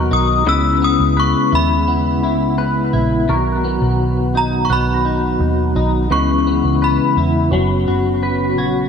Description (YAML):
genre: dream pop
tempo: 85 BPM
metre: 4/4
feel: straight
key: B major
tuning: A4 = 440 Hz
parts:
  - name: synth chime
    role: melody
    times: 0.0-8.2 s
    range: A#5 to E6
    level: -20 LUFS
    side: left 2 dB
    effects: ensemble chorus, phaser, digital delay
  - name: percussive tonewheel organ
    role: sustained chords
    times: 0.0-8.9 s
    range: C#3 to F#4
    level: -19 LUFS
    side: right 2 dB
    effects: fast rotary speaker
  - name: clean electric guitar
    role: arpeggios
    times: 0.0-8.9 s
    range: B2 to B4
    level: -19 LUFS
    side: left 5 dB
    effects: analog chorus, digital delay
  - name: vintage muted picked electric bass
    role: bass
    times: 0.0-8.9 s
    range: F#1 to E2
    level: -20 LUFS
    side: right 1 dB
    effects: none
  - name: worn celesta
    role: texture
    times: 0.0-8.9 s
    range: C#6 to D#7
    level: -30 LUFS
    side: right 5 dB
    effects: stereo widening, digital delay
room: moderate plate reverb, RT60 3.3 s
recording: none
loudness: -14 LUFS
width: side -6 dB against mid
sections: 0.0-8.9 A section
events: none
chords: 0.5 C#m7; 3.3 Bmaj7; 6.1 C#m7; 7.5 F#sus4